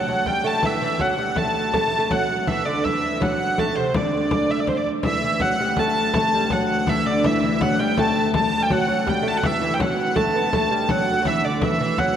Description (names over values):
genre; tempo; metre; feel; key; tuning
medieval dance; 164 BPM; 3/4; straight; D major; A4 = 441 Hz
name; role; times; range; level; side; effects
warm hurdy-gurdy; melody; 0.0-12.2 s; C5 to A5; -22 LUFS; equal; none
lute; second line; 0.0-12.2 s; C3 to B3; -24 LUFS; right 3 dB; none
clear viola da gamba; drone; 0.0-12.2 s; D2; -28 LUFS; left 3 dB; none
frame drum; percussion; 0.1-12.1 s; none; -26 LUFS; left 2 dB; none
room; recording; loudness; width
wet church reverb, RT60 3.2 s; none; -18 LUFS; side -9 dB against mid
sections
0.0-5.0 A section; 5.0-12.2 A section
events
none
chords
none